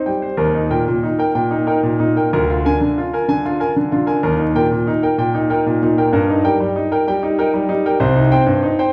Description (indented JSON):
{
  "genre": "classical, baroque-style suite movement for grand piano",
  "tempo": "63 BPM (dotted quarters)",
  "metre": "6/8",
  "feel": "rubato",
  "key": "Eb major",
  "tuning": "A4 = 441 Hz",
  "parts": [
    { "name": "bright grand piano", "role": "solo", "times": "0.0-8.9 s", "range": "C2 to Ab5", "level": "-17 LUFS", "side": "equal", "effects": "none" }
  ],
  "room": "wet recital hall reverb, RT60 1.4 s",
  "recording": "heard from further back in the room, vinyl crackle",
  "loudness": "-17 LUFS",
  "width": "mono",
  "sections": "0.4-8.9 A section",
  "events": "none",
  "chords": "0.4 Eb; 2.3 Bb7/D; 4.2 Eb; 6.1 Eb/G; 8.0 Cm"
}